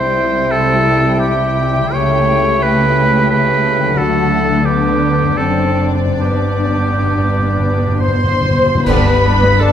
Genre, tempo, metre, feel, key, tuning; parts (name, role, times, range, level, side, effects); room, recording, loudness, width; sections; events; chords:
classical, slow romantic movement for symphony orchestra; 62-91 BPM; 3/4; rubato; G major; A4 = 440 Hz
muted symphonic violin section; melody; 0.0-9.7 s; D5 to C6; -25 LUFS; left 1 dB
clear oboe; second line; 0.0-9.7 s; G4 to C#5; -17 LUFS; right 1 dB
muted studio violin section; second line; 0.0-9.7 s; D4 to C5; -24 LUFS; left 3 dB
muted studio viola section; accompaniment; 0.0-9.7 s; G3 to D4; -23 LUFS; right 1 dB
mellow French horn section; sustained chords; 0.0-9.1 s; G3 to G4; -21 LUFS; left 3 dB
concert harp; arpeggios; 0.0-9.7 s; F#2 to D5; -22 LUFS; left 8 dB
muted studio cello section; bass; 0.0-9.7 s; F#2 to D3; -20 LUFS; right 1 dB
muted studio double bass section; bass; 0.0-9.7 s; F#1 to D2; -20 LUFS; right 3 dB
timpani; percussion; 4.0-8.8 s; G2 to D3; -22 LUFS; left 1 dB
flute section; second line; 8.0-9.7 s; A4 to C5; -21 LUFS; left 1 dB
clear trombone section; sustained chords; 8.9-9.1 s; D3 to G3; -23 LUFS; right 2 dB
clash cymbals and concert bass drum; percussion; 8.9-9.7 s; -19 LUFS; equal
mellow bassoon; accompaniment; 9.6-9.7 s; D4; -16 LUFS; left 3 dB
moderate recital hall reverb, RT60 1.8 s; minimal, uncompressed stereo recording; -12 LUFS; side -9 dB against mid
0.0-8.9 A section
timpani fill 6.2-8.9; band accent 8.9-9.6
0.0 C; 1.9 A7/C#; 4.0 D; 4.6 G/D; 5.4 D7/F#; 6.2 G